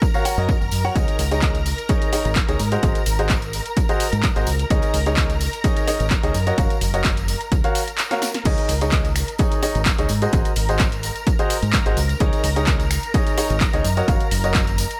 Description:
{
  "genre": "piano house",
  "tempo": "128 BPM",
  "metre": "4/4",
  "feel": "swing 53% on 16ths",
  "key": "unclear",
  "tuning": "A4 = 440 Hz",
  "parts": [
    { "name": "analog string pad", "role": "sustained chords", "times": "0.0-15.0 s", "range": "Bb4 to Bb5", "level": "-32 LUFS", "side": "equal", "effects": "ensemble chorus, sidechain pumping" },
    { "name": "electronic kick drum", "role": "drums", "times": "0.0-14.6 s", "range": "none", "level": "-23 LUFS", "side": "equal", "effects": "overdrive" },
    { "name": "tambourine", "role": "percussion", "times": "0.0-15.0 s", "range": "none", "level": "-36 LUFS", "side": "equal", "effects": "none" },
    { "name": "clear grand piano", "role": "riff", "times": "0.1-14.6 s", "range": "Eb4 to Gb5", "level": "-27 LUFS", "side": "equal", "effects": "sidechain pumping, digital delay" },
    { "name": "punchy analog drum machine", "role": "drums", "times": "0.3-15.0 s", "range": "crash cymbal, finger snaps, handclaps, hi-hat, snare drum", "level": "-29 LUFS", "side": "equal", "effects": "overdrive" },
    { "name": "growling fingered electric bass", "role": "bass", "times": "0.4-14.8 s", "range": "Gb1 to Ab2", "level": "-25 LUFS", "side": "equal", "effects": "overdrive, sidechain pumping" }
  ],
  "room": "little or no reverb",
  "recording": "none",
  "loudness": "-20 LUFS",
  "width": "mono",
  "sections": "0.0-15.0 A section",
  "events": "kick drops out 8.0-8.5; drum fill 8.1-8.5",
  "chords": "0.0 Gb; 1.0 Dbsus2; 2.6 Ab7; 4.5 Dbsus2; 6.3 Gbmaj7; 8.5 Dbsus2; 10.1 Ab7; 12.0 Dbsus2; 13.8 Gbmaj7"
}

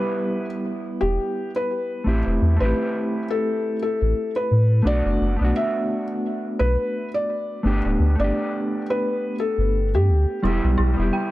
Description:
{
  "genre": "trip hop",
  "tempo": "86 BPM",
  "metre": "4/4",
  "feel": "swing 57% on 16ths",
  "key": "E minor",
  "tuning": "A4 = 440 Hz",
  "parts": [
    { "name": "felt-muted upright piano", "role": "melody", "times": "0.0-10.4 s", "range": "G4 to E5", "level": "-26 LUFS", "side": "left 1 dB", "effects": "tape echo" },
    { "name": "mellow electric guitar", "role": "accompaniment", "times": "0.0-11.3 s", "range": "G3 to G4", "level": "-25 LUFS", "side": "equal", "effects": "harmonic tremolo, tape echo" },
    { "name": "soft dub sub bass", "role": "bass", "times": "1.0-11.1 s", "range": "D1 to A2", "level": "-19 LUFS", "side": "equal", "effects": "tube saturation" },
    { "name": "dark detuned synth bell", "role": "arpeggios", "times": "10.4-11.3 s", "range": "E4 to G5", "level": "-27 LUFS", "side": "right 4 dB", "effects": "chorus" }
  ],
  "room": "light reverb",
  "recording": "none",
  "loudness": "-20 LUFS",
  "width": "side -16 dB against mid",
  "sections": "0.0-11.3 A section",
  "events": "none",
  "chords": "0.0 Em; 2.1 Am7; 4.8 Bm7; 7.6 Gadd9; 10.4 Em"
}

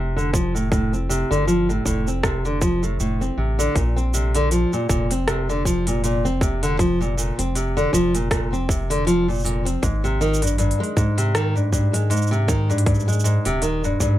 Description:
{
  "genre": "folktronica",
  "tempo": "79 BPM",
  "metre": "4/4",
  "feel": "swing 56% on 16ths",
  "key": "Bb major",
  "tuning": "A4 = 440 Hz",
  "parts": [
    { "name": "nylon-string guitar", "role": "arpeggios", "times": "0.0-14.2 s", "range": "G2 to C4", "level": "-21 LUFS", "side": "equal", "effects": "low-pass filter, digital delay" },
    { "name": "round analog bass", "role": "bass", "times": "0.0-14.2 s", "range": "Eb1 to Ab2", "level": "-23 LUFS", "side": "equal", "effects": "none" },
    { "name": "organic electronic drum kit", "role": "drums", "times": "0.2-14.2 s", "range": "hi-hat, rim click, shaker", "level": "-28 LUFS", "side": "right 2 dB", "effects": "none" },
    { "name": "electronic kick drum", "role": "drums", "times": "0.3-14.2 s", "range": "none", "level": "-23 LUFS", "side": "equal", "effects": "none" }
  ],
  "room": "light reverb",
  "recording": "none",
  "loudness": "-18 LUFS",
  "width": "side -13 dB against mid",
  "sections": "0.0-14.2 A section",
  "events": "none",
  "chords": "0.0 Dm7; 3.8 Bbadd9; 9.8 Abmaj7"
}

